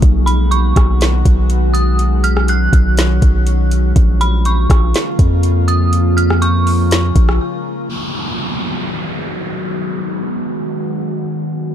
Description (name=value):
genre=hip hop, atmospheric cloud-rap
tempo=122 BPM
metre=4/4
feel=half-time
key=B lydian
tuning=A4 = 440 Hz
part: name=glassy FM pad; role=sustained chords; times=0.0-11.7 s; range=C#3 to F#4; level=-20 LUFS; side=left 1 dB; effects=ensemble chorus, built-in reverb, sidechain pumping, low-pass filter
part: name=long sustained 808-style bass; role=bass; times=0.0-7.4 s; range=A#1 to E#2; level=-13 LUFS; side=equal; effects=none
part: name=smooth R&B drum kit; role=drums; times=0.0-7.4 s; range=hi-hat, kick drum, rim click, snare drum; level=-14 LUFS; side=equal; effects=none
part: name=dark detuned synth bell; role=melody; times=0.3-10.8 s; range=B5 to F#6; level=-22 LUFS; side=right 2 dB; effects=chorus, low-pass filter, ping-pong delay
part: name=downlifter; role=sound effects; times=7.9-11.7 s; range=none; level=-25 LUFS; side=equal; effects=none
room=digital ambience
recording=dark, warm production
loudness=-12 LUFS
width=side -10 dB against mid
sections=0.0-7.9 A section; 7.9-11.7 B section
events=break 7.4-7.9; filter sweep 7.9-11.7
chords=0.0 B6; 4.0 A#m7; 7.9 B6